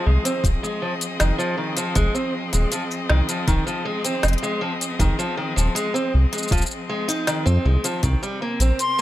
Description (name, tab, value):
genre	folktronica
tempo	79 BPM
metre	4/4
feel	straight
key	F minor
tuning	A4 = 444 Hz
part	dark string quartet	sustained chords	0.0-9.0 s	C3 to Eb5	-29 LUFS	left 1 dB	none
part	picked acoustic archtop guitar	arpeggios	0.0-9.0 s	Eb3 to Eb4	-25 LUFS	equal	low-pass filter, tape echo
part	round analog bass	bass	0.1-8.7 s	Eb1 to F2	-18 LUFS	equal	tube saturation
part	organic electronic drum kit	drums	0.3-9.0 s	hi-hat, shaker, snare drum	-26 LUFS	left 1 dB	overdrive
part	electronic kick drum	drums	0.4-8.2 s	none	-23 LUFS	equal	overdrive
part	bright reedy silver concert flute	melody	8.8-9.0 s	C6	-19 LUFS	left 2 dB	none
room	light reverb, studio ambience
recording	none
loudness	-20 LUFS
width	side -14 dB against mid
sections	0.0-9.0 A section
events	none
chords	0.0 Fm7; 8.0 Cm7